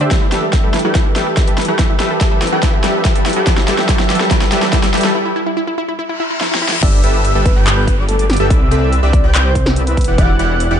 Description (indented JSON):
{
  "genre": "future bass",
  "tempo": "143 BPM",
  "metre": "4/4",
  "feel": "half-time",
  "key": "G major",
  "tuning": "A4 = 440 Hz",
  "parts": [
    { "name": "warm studio string section", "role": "sustained chords", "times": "0.0-5.1 s", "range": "E3 to B4", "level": "-27 LUFS", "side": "left 1 dB", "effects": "none" },
    { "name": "wide unison pluck", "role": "arpeggios", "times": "0.0-6.8 s", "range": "E4 to E5", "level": "-22 LUFS", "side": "equal", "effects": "sidechain pumping, tape echo" },
    { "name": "supersaw stab", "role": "riff", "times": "0.0-10.8 s", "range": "D3 to G5", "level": "-18 LUFS", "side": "equal", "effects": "sidechain pumping, low-pass filter" },
    { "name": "riser, reverse cymbal and downlifter", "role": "sound effects", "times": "0.5-10.2 s", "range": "none", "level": "-24 LUFS", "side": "equal", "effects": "none" },
    { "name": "big-room dance drum kit", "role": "drums", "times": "0.1-10.7 s", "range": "crash cymbal, handclaps, hi-hat, snare drum", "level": "-19 LUFS", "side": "equal", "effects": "overdrive, high-pass filter on snare, studio reverb, high-pass filter on hats, high-pass filter on cymbals" },
    { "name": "electronic kick drum", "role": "drums", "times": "0.1-10.3 s", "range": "none", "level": "-14 LUFS", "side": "equal", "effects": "overdrive, studio reverb" },
    { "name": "soft octave-layered synth lead", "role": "melody", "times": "6.8-10.4 s", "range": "A4 to F#5", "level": "-23 LUFS", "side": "equal", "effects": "chorus, sidechain pumping, tape echo" },
    { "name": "airy dreamy lead", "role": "arpeggios", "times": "6.8-10.8 s", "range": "D6 to G6", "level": "-25 LUFS", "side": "equal", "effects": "chorus, sidechain pumping, tape echo" },
    { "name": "wide detuned saw bass", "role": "bass", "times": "6.8-10.8 s", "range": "E1 to C2", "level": "-15 LUFS", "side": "equal", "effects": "chorus, sidechain pumping" }
  ],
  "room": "light reverb",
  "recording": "dark, warm production, nothing above 10.4 kHz",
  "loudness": "-12 LUFS",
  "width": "side -8 dB against mid",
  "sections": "0.0-6.8 A section; 6.8-10.8 B section",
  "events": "build-up 0.0-6.8; drum fill 0.0-5.1, 6.4-6.8; riser 0.5-5.1; break 5.1-6.8; reverse cymbal 6.1-6.8; drop 6.8-10.8",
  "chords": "0.1 G69; 1.8 Cmaj9; 3.3 Em9; 5.1 N.C.; 6.8 G69; 8.5 Cmaj9; 10.0 Em9"
}